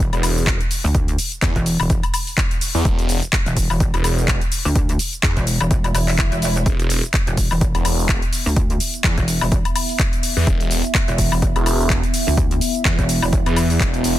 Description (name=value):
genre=bass house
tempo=126 BPM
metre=4/4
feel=swing 57% on 16ths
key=unclear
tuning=A4 = 441 Hz
part: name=pulsing pluck wobble bass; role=bass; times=0.0-13.4 s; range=E1 to D2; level=-20 LUFS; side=equal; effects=chorus, overdrive, sidechain pumping
part: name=house drum kit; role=drums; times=0.0-14.2 s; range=cabasa, handclaps, hi-hat, woodblock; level=-23 LUFS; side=left 2 dB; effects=none
part: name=phased detuned saw bass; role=bass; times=0.1-14.2 s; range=E1 to E2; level=-19 LUFS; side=equal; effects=phaser, tube saturation, sidechain pumping
part: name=electronic kick drum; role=drums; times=0.5-13.9 s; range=none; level=-20 LUFS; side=equal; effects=none
part: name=swell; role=sound effects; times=5.9-6.7 s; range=none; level=-29 LUFS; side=right 1 dB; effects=none
part: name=dark analog pad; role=sustained chords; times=8.0-14.2 s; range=B3 to E5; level=-26 LUFS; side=right 1 dB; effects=chorus, phaser, sidechain pumping
room=digital ambience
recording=dense, heavily limited modern master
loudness=-16 LUFS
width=side -14 dB against mid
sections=0.0-14.2 A section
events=swell 5.9-6.7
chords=0.0 E5